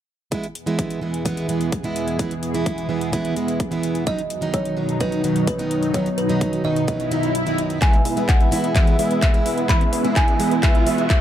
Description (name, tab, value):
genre	EDM, festival progressive house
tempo	128 BPM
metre	4/4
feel	straight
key	E major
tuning	A4 = 440 Hz
part	picked plugged-in steel-string acoustic guitar	accompaniment	0.3-11.1 s	D#3 to E4	-24 LUFS	right 3 dB	sidechain pumping
part	lush unison pad	sustained chords	0.3-11.2 s	B2 to G#4	-26 LUFS	equal	chorus, phaser, sidechain pumping
part	big-room dance drum kit	drums	0.3-11.2 s	handclaps, hi-hat	-29 LUFS	left 1 dB	none
part	electronic kick drum	drums	0.3-11.2 s	none	-20 LUFS	equal	high-pass filter on kick
part	kalimba	melody	4.1-11.2 s	B4 to B5	-26 LUFS	equal	dub echo
part	swell and riser	sound effects	7.0-11.2 s	none	-29 LUFS	left 2 dB	none
part	wide unison lead	arpeggios	7.8-11.2 s	E5	-30 LUFS	right 2 dB	sidechain pumping, dub echo
part	supersaw chords	riff	7.8-11.2 s	G#3 to E5	-25 LUFS	equal	sidechain pumping, low-pass filter
part	fat analog bass	bass	8.1-11.0 s	E2	-33 LUFS	equal	none
room	little or no reverb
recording	dark, warm production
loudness	-18 LUFS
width	side -11 dB against mid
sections	0.3-7.8 A section; 7.8-11.2 B section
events	swell 7.0-7.8; kick drops out 7.3-7.8; build-up 7.8-11.2; drum fill 7.8-11.2; riser 7.8-11.2; filter sweep on supersaw synth 7.8-11.2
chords	0.3 E; 4.1 B; 7.8 E